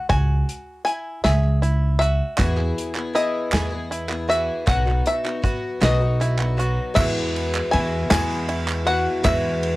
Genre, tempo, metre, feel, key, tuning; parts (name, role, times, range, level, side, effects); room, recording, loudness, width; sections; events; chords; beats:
indie folk with a building arrangement; 52 BPM (dotted quarters); 6/8; straight; E major; A4 = 440 Hz
bluegrass banjo; melody; 0.0-9.8 s; D#5 to G#5; -24 LUFS; left 1 dB
bluegrass banjo; arpeggios; 0.0-9.8 s; E4 to G#4; -31 LUFS; right 2 dB; cassette tape
upright bass; bass; 0.1-9.8 s; B1 to E2; -22 LUFS; equal
natural country drum kit; drums; 0.1-9.8 s; crash cymbal, hi-hat, kick drum, ride cymbal, snare drum; -25 LUFS; equal
picked twelve-string acoustic guitar; accompaniment; 2.4-9.8 s; B2 to G#4; -28 LUFS; left 2 dB; cassette tape
group handclap; percussion; 2.4-9.4 s; -28 LUFS; right 4 dB
dark upright piano; accompaniment; 6.9-9.8 s; E2 to F#5; -32 LUFS; right 2 dB
mellow brass ensemble; sustained chords; 7.0-9.8 s; E3 to B4; -33 LUFS; equal
tambourine; percussion; 7.0-9.4 s; -40 LUFS; right 4 dB
little or no reverb; home recording on cassette; -19 LUFS; side -18 dB against mid
0.0-7.0 A section; 7.0-9.8 B section
0.0 C#m; 2.4 E; 4.7 B; 7.0 Eadd9
| 0.09 1.24 | 2.38 3.53 | 4.67 5.82 | 6.96 8.10 | 9.24